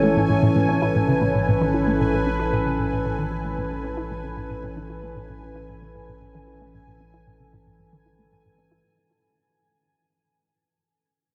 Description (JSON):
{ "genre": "ambient, sequencer-driven space music", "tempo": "114 BPM", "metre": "4/4", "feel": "straight", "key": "A major", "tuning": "A4 = 441 Hz", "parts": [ { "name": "sweeping resonant pad", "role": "sustained chords", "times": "0.0-8.8 s", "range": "E3 to C#5", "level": "-26 LUFS", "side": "equal", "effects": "chorus, shimmer reverb" }, { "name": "resonant blip pluck", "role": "riff", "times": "0.0-8.8 s", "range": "A2 to E4", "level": "-27 LUFS", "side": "equal", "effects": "phaser, analog delay" }, { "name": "warm sub bass", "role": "bass", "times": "0.0-8.8 s", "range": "A1", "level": "-38 LUFS", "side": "equal", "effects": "none" }, { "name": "bubbling stepped-filter texture", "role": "texture", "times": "0.0-8.9 s", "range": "G#5", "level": "-35 LUFS", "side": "equal", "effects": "chorus, built-in reverb, shimmer reverb" } ], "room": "wet cathedral reverb, RT60 6.5 s", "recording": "in a vast, echoing space", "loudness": "-22 LUFS", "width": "mono", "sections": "0.0-8.8 A section", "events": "fade-out 0.0-8.8; filter sweep on synth arpeggio sound 0.0-8.8", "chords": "0.0 A", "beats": "| 0.42 0.95 1.48 2.00 | 2.53 3.06 3.58 4.11 | 4.64 5.16 5.69 6.21 | 6.74 7.27 7.79 8.32" }